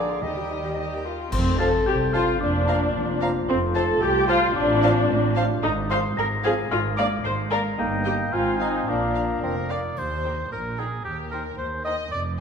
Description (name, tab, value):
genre	cinematic, playful, whimsical film cue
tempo	112 BPM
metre	2/4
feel	straight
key	F major, Eb major from 5.6 s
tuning	A4 = 440 Hz
part	dark studio violin section	melody	0.0-11.9 s	Eb5 to Bb5	-39 LUFS	left 3 dB	none
part	clear clarinet	second line	0.0-9.7 s	G4 to F5	-37 LUFS	left 2 dB	none
part	mellow hollow small flute group	second line	0.0-9.4 s	Bb4 to D6	-32 LUFS	equal	none
part	warm oboe	second line	0.0-12.2 s	G4 to Bb5	-33 LUFS	right 2 dB	none
part	warm studio violin section	second line	0.0-12.4 s	G4 to G5	-35 LUFS	left 3 dB	none
part	warm bassoon	accompaniment	0.0-9.8 s	D3 to C4	-33 LUFS	right 2 dB	none
part	warm studio viola section	accompaniment	0.0-11.9 s	Bb3 to D5	-25 LUFS	equal	none
part	dark French horn section	sustained chords	0.0-9.7 s	A3 to Bb4	-29 LUFS	left 4 dB	none
part	dark studio cello section	bass	0.0-12.4 s	C2 to Eb3	-32 LUFS	right 1 dB	none
part	rich studio double bass section	bass	0.0-12.4 s	F1 to Eb2	-30 LUFS	right 3 dB	none
part	glockenspiel with rubber mallets	melody	1.3-9.4 s	Bb5 to D7	-31 LUFS	left 5 dB	none
part	clash cymbals, concert bass drum and triangle	percussion	1.3-2.4, 10.0-11.0 s	none	-31 LUFS	equal	none
room	moderate scoring stage reverb, RT60 1.9 s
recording	minimal, uncompressed stereo recording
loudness	-21 LUFS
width	side -6 dB against mid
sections	0.0-1.3 A section; 1.3-10.0 B section; 10.0-12.4 A section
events	band accent 1.3-1.9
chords	0.2 Eb; 1.3 F; 2.4 Bb/F; 3.5 F; 4.6 F/A; 5.6 Fm/Ab; 6.7 Bb7/Ab; 7.8 Eb/G; 8.3 Fm/Ab; 8.9 Bb; 10.0 Eb5; 11.0 Cm/Eb